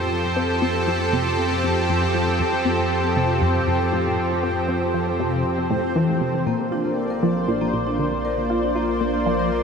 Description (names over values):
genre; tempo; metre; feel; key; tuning
ambient, sequencer-driven space music; 118 BPM; 4/4; straight; unclear; A4 = 440 Hz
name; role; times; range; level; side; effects
lush unison pad; sustained chords; 0.0-9.6 s; F3 to D5; -22 LUFS; equal; chorus
tight sequenced synth; riff; 0.0-9.5 s; F2 to F4; -25 LUFS; equal; chorus, phaser, analog delay
warm sub bass; bass; 0.0-9.6 s; Bb1 to F2; -29 LUFS; equal; none
bubbling stepped-filter texture; texture; 0.0-9.6 s; C5 to D5; -30 LUFS; left 1 dB; chorus, built-in reverb
vibraphone with soft mallets; arpeggios; 6.5-9.6 s; Bb3 to Bb4; -27 LUFS; left 1 dB; auto-pan, analog delay
room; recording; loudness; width
wet huge ambient reverb, RT60 7.7 s; none; -19 LUFS; side -6 dB against mid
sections
0.0-9.6 A section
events
filter sweep on synth arpeggio sound 0.0-9.6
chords
0.0 F; 6.5 Bb